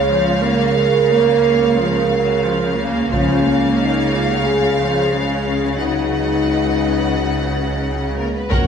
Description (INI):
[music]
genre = cinematic, epic orchestral film score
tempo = 89 BPM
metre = 4/4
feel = straight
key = Db mixolydian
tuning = A4 = 440 Hz
[part]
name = clear symphonic violin section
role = melody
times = 0.0-8.7 s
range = Bb4 to Gb5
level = -27 LUFS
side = left 2 dB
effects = none
[part]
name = rich symphonic violin section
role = second line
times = 0.0-8.7 s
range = Cb5 to F#5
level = -26 LUFS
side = left 1 dB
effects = none
[part]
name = rich symphonic viola section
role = accompaniment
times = 0.0-8.7 s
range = F3 to A#4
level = -22 LUFS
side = equal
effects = none
[part]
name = warm French horn section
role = sustained chords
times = 0.0-8.7 s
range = Bb3 to Db5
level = -19 LUFS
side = right 1 dB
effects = none
[part]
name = clear symphonic cello section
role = bass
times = 0.0-8.6 s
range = F#2 to Db3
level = -23 LUFS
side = right 1 dB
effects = none
[part]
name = clear symphonic double bass section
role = bass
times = 0.0-8.6 s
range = F#1 to Db2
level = -23 LUFS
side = right 2 dB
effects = none
[part]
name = taiko ensemble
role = drums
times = 3.1-4.4, 8.5-8.7 s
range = none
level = -20 LUFS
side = equal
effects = none
[part]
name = dark trombone section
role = sustained chords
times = 8.5-8.7 s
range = F#3 to A#3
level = -25 LUFS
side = right 5 dB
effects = none
[sound]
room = moderate scoring stage reverb, RT60 1.8 s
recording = small room ambience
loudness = -15 LUFS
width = side -7 dB against mid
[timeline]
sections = 0.0-8.5 A section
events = none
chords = 0.0 Db; 5.8 Cb/Db